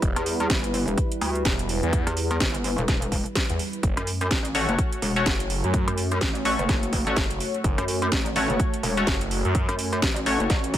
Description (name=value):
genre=bass house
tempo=126 BPM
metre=4/4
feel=swing 58% on 16ths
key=F# phrygian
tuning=A4 = 439 Hz
part: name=dark analog pad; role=sustained chords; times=0.0-10.8 s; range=G3 to C#5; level=-31 LUFS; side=equal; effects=chorus, sidechain pumping
part: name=phased detuned saw bass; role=bass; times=0.0-9.7 s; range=E1 to F#2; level=-27 LUFS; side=equal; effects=phaser, overdrive, sidechain pumping
part: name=electronic kick drum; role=drums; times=0.0-10.8 s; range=none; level=-26 LUFS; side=equal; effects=none
part: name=house drum kit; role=drums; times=0.0-10.8 s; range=hi-hat, snare drum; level=-29 LUFS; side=right 1 dB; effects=none
part: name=pulsing pluck wobble bass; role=bass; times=0.2-10.8 s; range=E1 to F#2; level=-26 LUFS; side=equal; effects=chorus, tube saturation, sidechain pumping
part: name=band-passed chord stab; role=stabs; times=4.5-10.8 s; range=A3 to C#5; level=-28 LUFS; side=left 2 dB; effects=chorus, sidechain pumping, dub echo
room=little or no reverb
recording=none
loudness=-22 LUFS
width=side -12 dB against mid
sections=0.0-10.8 A section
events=none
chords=0.0 Em; 3.8 F#m